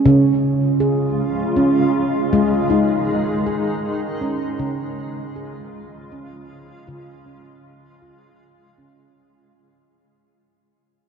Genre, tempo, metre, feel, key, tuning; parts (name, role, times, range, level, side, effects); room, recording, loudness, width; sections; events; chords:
world meditative, meditative tuned percussion; 79 BPM; 3/4; swing 53% on 16ths; Db major pentatonic; A4 = 440 Hz
granular cloud pad; sustained chords; 0.6-9.2 s; Db3 to F4; -24 LUFS; left 1 dB; built-in reverb, shimmer reverb
handpan; arpeggios; 0.0-9.2 s; Db3 to Ab4; -18 LUFS; right 1 dB; diffuse ambient delay
wet church reverb, RT60 3.8 s; dark, warm production; -17 LUFS; side -6 dB against mid
0.0-9.2 A section
fade-out 0.0-9.2
0.0 Db; 2.3 Ab5; 4.6 Db